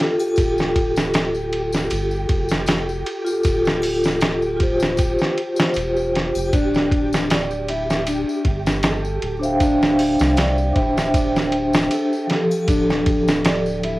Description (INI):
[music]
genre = trip hop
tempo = 78 BPM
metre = 4/4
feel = swing 56% on 16ths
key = D minor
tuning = A4 = 440 Hz
[part]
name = vibraphone with soft mallets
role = accompaniment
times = 0.0-14.0 s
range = F3 to G5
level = -20 LUFS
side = equal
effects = tremolo, cassette tape
[part]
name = dusty soul sampler-style drum kit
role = drums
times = 0.0-14.0 s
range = hi-hat, kick drum, ride cymbal, snare drum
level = -21 LUFS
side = equal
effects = none
[part]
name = flickering grainy texture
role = texture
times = 0.0-14.0 s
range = G4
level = -30 LUFS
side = right 2 dB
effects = built-in reverb, cassette tape
[part]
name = triangle and tambourine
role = percussion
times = 0.2-13.8 s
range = none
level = -39 LUFS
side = left 4 dB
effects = none
[part]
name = soft dub sub bass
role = bass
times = 0.4-14.0 s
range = D1 to C2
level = -27 LUFS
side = equal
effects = tube saturation
[part]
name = mellow electric guitar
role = arpeggios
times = 6.5-14.0 s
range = D4 to D5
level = -23 LUFS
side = equal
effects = cassette tape, tape echo
[sound]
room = moderate studio reverb, RT60 0.5 s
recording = home recording on cassette, vinyl crackle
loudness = -17 LUFS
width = side -18 dB against mid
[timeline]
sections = 0.0-14.0 A section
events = none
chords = 0.0 Dm11